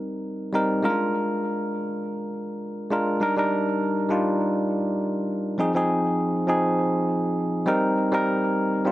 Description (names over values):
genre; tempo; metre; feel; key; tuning
afrobeats; 101 BPM; 4/4; swing 55% on 16ths; Eb major; A4 = 440 Hz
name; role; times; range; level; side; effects
bell-like tine electric piano; solo; 0.0-8.9 s; F3 to Bb4; -22 LUFS; equal; tape echo
room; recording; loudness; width
light reverb, digital ambience; none; -22 LUFS; side -15 dB against mid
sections
0.0-3.2 A section; 3.2-8.9 B section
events
none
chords
0.0 Cm7; 0.8 Bb7; 3.2 Ebmaj7; 5.6 Fm7; 7.7 Cm7